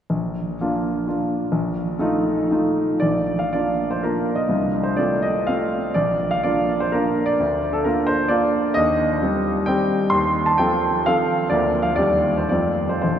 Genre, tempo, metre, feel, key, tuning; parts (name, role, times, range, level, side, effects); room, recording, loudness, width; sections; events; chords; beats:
classical, romantic triple-time dance for piano with dotted rhythms; 106-138 BPM; 3/4; rubato; Bb major; A4 = 441 Hz
clear grand piano; solo; 0.1-13.2 s; Bb1 to C6; -18 LUFS; equal
wet cathedral reverb, RT60 5.7 s; heard from further back in the room; -18 LUFS; side -9 dB against mid
0.1-3.0 A section; 3.0-13.2 B section
0.1 Bb; 1.5 F7/Bb; 3.0 Bb; 4.5 F/C; 6.0 Bb; 7.4 Bb/D; 8.8 Cm/Eb; 10.1 F7/Eb; 11.5 Bb/D; 12.0 Cm/Eb; 12.5 F
| 0.11 0.59 1.06 | 1.50 1.98 2.50 | 3.01 3.52 4.03 | 4.49 4.98 5.49 | 5.97 6.45 6.93 | 7.39 7.86 8.31 | 8.76 9.22 9.69 | 10.13 10.60 11.06 | 11.51 11.97 12.49 | 13.04